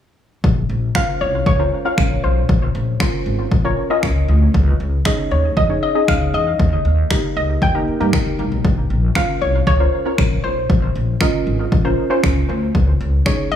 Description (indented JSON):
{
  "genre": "dance-pop",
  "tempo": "117 BPM",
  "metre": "4/4",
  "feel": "straight",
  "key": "Bb minor",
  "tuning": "A4 = 440 Hz",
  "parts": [
    { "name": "upright bass", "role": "bass", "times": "0.4-13.6 s", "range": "Ab1 to G2", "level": "-18 LUFS", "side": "left 1 dB", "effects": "sidechain pumping" },
    { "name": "house drum kit", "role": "drums", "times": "0.4-13.4 s", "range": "finger snaps, kick drum", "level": "-19 LUFS", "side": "equal", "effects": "none" },
    { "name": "soft round pluck", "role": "accompaniment", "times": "0.9-13.6 s", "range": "Bb3 to F5", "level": "-23 LUFS", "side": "equal", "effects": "chorus, sidechain pumping, tape echo" },
    { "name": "soft round pluck", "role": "melody", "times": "1.0-13.6 s", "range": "C5 to G5", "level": "-22 LUFS", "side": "left 1 dB", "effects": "chorus, tape echo" }
  ],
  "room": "light reverb",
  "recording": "echo-heavy mix, studio reverb",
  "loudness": "-15 LUFS",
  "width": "side -10 dB against mid",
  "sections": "0.4-13.6 A section",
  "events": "none",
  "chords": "0.4 Bbmadd9; 4.5 Dbsus2; 6.6 Eb; 8.6 Bbmadd9; 12.7 Dbsus2"
}